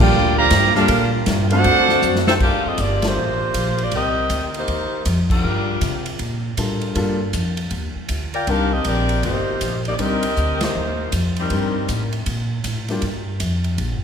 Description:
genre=jazz, big band swing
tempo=158 BPM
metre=4/4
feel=swing 64% on 8ths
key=G minor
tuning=A4 = 440 Hz
part: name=clear trumpet section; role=melody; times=0.0-2.2 s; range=D4 to Bb5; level=-17 LUFS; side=right 2 dB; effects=none
part: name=mellow trombone section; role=second line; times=0.0-2.2 s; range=D3 to G4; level=-25 LUFS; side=right 1 dB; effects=none
part: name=clear baby grand piano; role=accompaniment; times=0.0-3.2, 6.6-13.0 s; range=G3 to Bb4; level=-26 LUFS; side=left 2 dB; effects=none
part: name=mellow trombone section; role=sustained chords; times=0.0-2.4 s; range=D3 to F#4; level=-28 LUFS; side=left 1 dB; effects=none
part: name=upright bass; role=bass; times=0.0-14.0 s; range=G1 to C3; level=-22 LUFS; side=equal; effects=none
part: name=swinging big-band drum kit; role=drums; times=0.0-13.9 s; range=crash cymbal, hi-hat, kick drum, ride cymbal, snare drum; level=-25 LUFS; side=equal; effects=none
part: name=warm saxophone section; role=melody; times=2.3-6.0, 8.3-12.1 s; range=G3 to G5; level=-22 LUFS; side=left 1 dB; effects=none
room=moderate concert hall reverb, RT60 2.2 s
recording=recorded in a church or concert hall, faint mains hum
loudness=-17 LUFS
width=side -7 dB against mid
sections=0.0-2.4 A section; 2.4-14.0 B section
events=drum fill 2.0-2.4; band accent 3.0, 5.3, 10.6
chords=0.0 Gm7; 1.6 D7; 2.4 Gm7; 3.9 Cm7; 5.4 Gm7; 8.5 Cm7; 13.0 Gm7

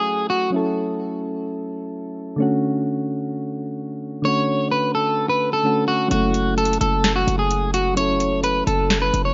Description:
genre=hip hop, trap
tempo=129 BPM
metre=4/4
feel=half-time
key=F# minor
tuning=A4 = 440 Hz
part: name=electric guitar at the edge of break-up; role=melody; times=0.0-0.5, 4.2-9.3 s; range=F#4 to C#5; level=-23 LUFS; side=equal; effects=none
part: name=soft electric-piano-like synth keys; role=accompaniment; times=0.0-9.3 s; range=D3 to A4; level=-26 LUFS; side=equal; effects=chorus
part: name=hard-hitting 808-style bass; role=bass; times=6.1-9.3 s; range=F#1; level=-26 LUFS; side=equal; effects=none
part: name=booming analog drum machine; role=drums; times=6.1-9.2 s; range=hi-hat, snare drum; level=-26 LUFS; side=equal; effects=none
room=light reverb, digital ambience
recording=nothing above 7.5 kHz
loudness=-21 LUFS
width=mono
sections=0.0-9.3 A section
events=break 0.5-4.3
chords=0.0 F#m7; 2.4 Dmaj7; 6.1 F#m7

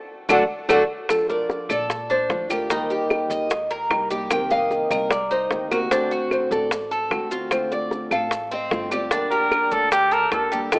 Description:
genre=latin, Cuban son and guajira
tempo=150 BPM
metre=4/4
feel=straight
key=G minor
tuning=A4 = 439 Hz
part: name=nylon-string guitar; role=melody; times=0.3-10.8 s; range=A4 to G5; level=-23 LUFS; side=equal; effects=none
part: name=fingerpicked steel-string acoustic guitar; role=accompaniment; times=0.3-10.8 s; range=C3 to A4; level=-27 LUFS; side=equal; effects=none
part: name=Cuban tres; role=arpeggios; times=0.3-10.8 s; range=A3 to Eb5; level=-27 LUFS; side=right 1 dB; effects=none
part: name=upright bass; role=bass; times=0.3-10.8 s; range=G1 to Bb2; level=-39 LUFS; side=equal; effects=none
part: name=bongos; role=percussion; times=0.3-10.8 s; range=none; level=-27 LUFS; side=left 1 dB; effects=none
part: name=claves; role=percussion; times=0.3-10.8 s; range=none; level=-26 LUFS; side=equal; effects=none
part: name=maracas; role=percussion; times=0.3-10.8 s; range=none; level=-37 LUFS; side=equal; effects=none
part: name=warm trumpet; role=second line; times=9.3-10.6 s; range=G4 to Bb4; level=-19 LUFS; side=equal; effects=none
room=moderate plate reverb, RT60 3.6 s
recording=rough home demo mix, AM radio sound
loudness=-19 LUFS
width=side -28 dB against mid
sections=0.0-1.1 A section; 1.1-10.8 B section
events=band accent 0.0-1.1; nylon-string guitar solo 0.0-1.1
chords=0.0 D; 1.1 Bbmaj7; 2.7 Eb; 4.3 Cm7; 5.9 D7; 7.5 Dm7; 9.1 Gmadd9

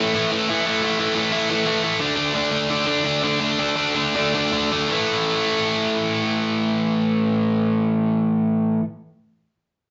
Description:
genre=punk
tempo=149-177 BPM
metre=4/4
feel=straight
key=unclear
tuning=A4 = 440 Hz
part: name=biting overdriven guitar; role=solo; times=0.0-8.8 s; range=A2 to D4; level=-21 LUFS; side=equal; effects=none
room=moderate large studio reverb, RT60 0.8 s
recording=band playing live in one room, nothing above 7.6 kHz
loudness=-21 LUFS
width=mono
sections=0.0-4.9 A section; 4.9-8.1 B section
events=slowing down 2.0-4.9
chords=0.0 A5; 2.0 D5; 4.9 A5

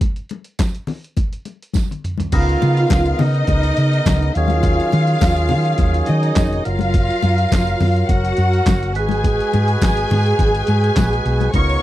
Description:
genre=disco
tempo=104 BPM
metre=4/4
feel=straight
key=G# dorian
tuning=A4 = 440 Hz
part: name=trip hop sampler-style drum kit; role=drums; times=0.0-11.8 s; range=crash cymbal, handclaps, hi-hat, kick drum, snare drum, toms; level=-18 LUFS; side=equal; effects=none
part: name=congas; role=percussion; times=0.0-11.7 s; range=none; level=-25 LUFS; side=left 7 dB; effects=none
part: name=tambourine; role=percussion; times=0.6-11.1 s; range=none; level=-36 LUFS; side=right 16 dB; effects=none
part: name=warm symphonic string section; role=second line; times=2.3-11.8 s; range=D#4 to C#6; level=-20 LUFS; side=equal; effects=none
part: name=percussive tonewheel organ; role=sustained chords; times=2.3-11.8 s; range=C#3 to B4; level=-24 LUFS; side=right 1 dB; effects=slow rotary speaker
part: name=hollow-body short-scale fingered electric bass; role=bass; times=2.3-11.8 s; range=E#1 to D#3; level=-18 LUFS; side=equal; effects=none
room=little or no reverb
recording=dry, close 1970s-style studio recording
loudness=-15 LUFS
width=side -14 dB against mid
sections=0.0-2.3 A section; 2.3-11.8 B section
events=drum fill 1.8-2.3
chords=0.0 N.C.; 2.3 C#13; 4.3 D#m11; 6.6 F#maj7; 8.9 G#m7

